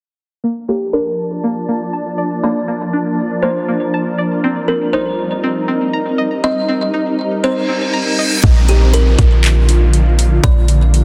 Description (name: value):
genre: hip hop, atmospheric cloud-rap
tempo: 120 BPM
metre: 4/4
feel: half-time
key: Bb major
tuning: A4 = 440 Hz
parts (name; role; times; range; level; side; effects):
- shimmering ambient pad; sustained chords; 1.1-11.0 s; D3 to A5; -21 LUFS; equal; chorus, built-in reverb, sidechain pumping, low-pass filter
- string-like resonator pluck; arpeggios; 0.4-8.4 s; Bb3 to Bb5; -24 LUFS; equal; chorus, low-pass filter, digital delay
- kalimba; melody; 0.7-11.0 s; G4 to Eb5; -24 LUFS; equal; low-pass filter, digital delay
- reverse cymbal and downlifter; sound effects; 7.6-11.0 s; none; -24 LUFS; equal; none
- clean 808-style bass; bass; 8.4-11.0 s; Bb1; -13 LUFS; equal; none
- trap drum kit; drums; 8.4-11.0 s; handclaps, hi-hat, kick drum; -16 LUFS; equal; none
room: light reverb, digital ambience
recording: dense, heavily limited modern master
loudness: -15 LUFS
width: mono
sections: 0.4-8.4 A section; 8.4-11.0 B section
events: filter sweep 0.4-8.4; reverse cymbal 7.6-8.4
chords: 0.4 Bbmaj7; 4.4 Cm7; 8.4 Bb